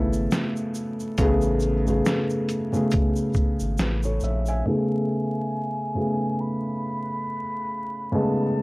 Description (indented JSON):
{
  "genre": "lo-fi hip hop",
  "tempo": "69 BPM",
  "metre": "4/4",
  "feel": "swing 57% on 16ths",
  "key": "A major",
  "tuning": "A4 = 440 Hz",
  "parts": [
    { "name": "felt-muted upright piano", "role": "accompaniment", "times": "0.0-8.6 s", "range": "C#3 to G#5", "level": "-24 LUFS", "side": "equal", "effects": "cassette tape, low-pass filter" },
    { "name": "warm sub bass", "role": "bass", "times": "0.0-4.6 s", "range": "G#1 to Bb1", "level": "-25 LUFS", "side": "equal", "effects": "none" },
    { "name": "tube shaker", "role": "percussion", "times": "0.1-4.6 s", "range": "none", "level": "-44 LUFS", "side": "right 3 dB", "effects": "none" },
    { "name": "lo-fi sampler-style drum kit", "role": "drums", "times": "0.3-4.5 s", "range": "hi-hat, kick drum, shaker, snare drum", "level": "-25 LUFS", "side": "equal", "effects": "vintage 12-bit sampler grit" },
    { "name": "breathy mellow jazz flute", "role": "melody", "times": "4.7-8.6 s", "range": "G#5 to B5", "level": "-32 LUFS", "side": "equal", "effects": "low-pass filter" }
  ],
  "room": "light reverb, small room reverb",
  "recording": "dry, gritty hardware recording, vinyl crackle",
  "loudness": "-22 LUFS",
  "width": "side -22 dB against mid",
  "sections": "0.0-4.7 A section; 4.7-8.6 B section",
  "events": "filter sweep 4.7-8.6",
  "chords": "0.0 Amaj9"
}